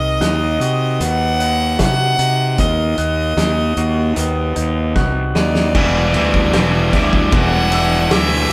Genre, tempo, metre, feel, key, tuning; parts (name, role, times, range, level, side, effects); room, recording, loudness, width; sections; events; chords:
post-rock; 76 BPM; 4/4; straight; A4 = 444 Hz
clear violin; melody; 0.0-8.5 s; D5 to F#5; -23 LUFS; equal
electric guitar through a small old amp; arpeggios; 0.0-8.5 s; E2 to G4; -27 LUFS; equal
glockenspiel with rubber mallets; arpeggios; 0.0-8.5 s; D6 to D#7; -32 LUFS; equal
fuzz fingered electric bass; bass; 0.0-8.5 s; E1 to C3; -21 LUFS; equal; overdrive
loose indie drum kit; drums; 0.2-8.5 s; crash cymbal, hi-hat, kick drum, ride cymbal, snare drum; -22 LUFS; equal
sludgy distorted guitar; riff; 5.7-8.5 s; E3 to E4; -23 LUFS; equal; overdrive
distorted electric guitar; riff; 5.8-8.5 s; E2 to E3; -22 LUFS; equal; overdrive
wet studio reverb, RT60 0.6 s; band playing live in one room; -16 LUFS; mono
0.0-5.8 A section; 5.8-8.5 B section
drum fill 5.0-5.8
0.0 B; 5.8 Em7